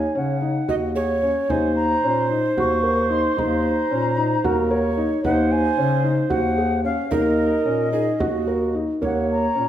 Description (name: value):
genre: contemporary instrumental, chamber music in an uneven meter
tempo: 223 BPM (eighths)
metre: 7/8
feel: straight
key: Eb dorian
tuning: A4 = 439 Hz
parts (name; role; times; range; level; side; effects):
- mellow jazz flute; melody; 0.0-9.7 s; Eb5 to Db6; -26 LUFS; left 1 dB; none
- breathy mellow tenor recorder; second line; 0.0-9.7 s; Gb4 to Eb5; -24 LUFS; right 3 dB; none
- dark bass clarinet; bass; 0.0-9.7 s; Eb2 to Db3; -25 LUFS; left 1 dB; none
- frame drum; percussion; 0.1-9.3 s; none; -31 LUFS; right 2 dB; none
- felt-muted upright piano; arpeggios; 0.2-9.7 s; Bb3 to Bb4; -24 LUFS; left 1 dB; none
room: wet recital hall reverb, RT60 1.7 s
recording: minimal, uncompressed stereo recording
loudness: -18 LUFS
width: side -11 dB against mid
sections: 0.0-9.0 A section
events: none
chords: 0.0 Gbsus2; 1.5 Eb7(no3); 5.2 Gbsus2/Eb; 7.1 Ebm; 9.0 Ebm7